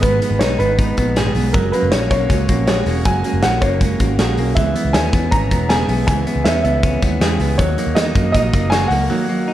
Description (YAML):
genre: jangly indie pop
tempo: 159 BPM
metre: 4/4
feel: straight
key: unclear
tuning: A4 = 440 Hz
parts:
  - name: warm upright piano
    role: melody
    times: 0.0-9.5 s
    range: A#4 to A#5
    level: -21 LUFS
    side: equal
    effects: none
  - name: fingerpicked steel-string acoustic guitar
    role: accompaniment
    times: 0.0-9.5 s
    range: G#2 to B4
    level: -22 LUFS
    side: right 6 dB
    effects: none
  - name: direct-recorded clean electric guitar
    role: arpeggios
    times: 0.0-9.5 s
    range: E3 to G#4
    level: -23 LUFS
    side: left 3 dB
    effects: slapback echo
  - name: vintage muted picked electric bass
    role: bass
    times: 0.0-9.1 s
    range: E1 to F#2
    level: -20 LUFS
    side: equal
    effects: none
  - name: big rock drum kit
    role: drums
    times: 0.0-9.0 s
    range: hi-hat, kick drum, snare drum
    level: -19 LUFS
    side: equal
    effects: none
  - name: tambourine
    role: percussion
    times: 0.2-9.0 s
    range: none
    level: -38 LUFS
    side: left 5 dB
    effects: none
room: moderate large studio reverb, RT60 1.1 s, studio reverb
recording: dark, warm production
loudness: -14 LUFS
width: side -13 dB against mid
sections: 0.0-9.5 A section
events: break 9.1-9.5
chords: 0.0 G#m; 1.5 F#add9; 4.6 C#m7; 7.6 D#m